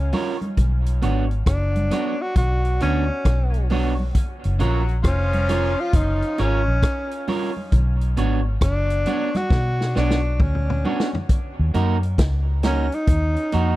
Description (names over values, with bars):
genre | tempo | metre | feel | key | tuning
roots reggae | 67 BPM | 4/4 | swing 65% on 16ths | unclear | A4 = 440 Hz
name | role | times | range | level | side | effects
breathy tenor saxophone | melody | 0.0-13.8 s | C#4 to F#4 | -27 LUFS | left 1 dB | dub echo
vintage muted fingered electric bass | bass | 0.0-13.8 s | E#1 to B2 | -20 LUFS | equal | none
electric guitar at the edge of break-up | accompaniment | 0.1-13.8 s | A#3 to C#5 | -27 LUFS | right 4 dB | dub echo
vintage drum kit | drums | 0.1-13.8 s | hi-hat, kick drum, rim click, snare drum, toms | -21 LUFS | equal | none
congas | percussion | 0.1-13.3 s | none | -30 LUFS | right 1 dB | none
warm horn section | second line | 4.6-6.6 s | C#3 to F#4 | -34 LUFS | left 2 dB | dub echo
room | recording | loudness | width
small room reverb | dry, close 1970s-style studio recording | -18 LUFS | side -16 dB against mid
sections
0.0-11.3 A section; 11.3-13.8 B section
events
drum fill 9.5-11.3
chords
0.0 F#maj7 (rootless); 0.6 Bmadd9; 4.1 F#maj7; 7.7 Bmadd9; 11.3 D#m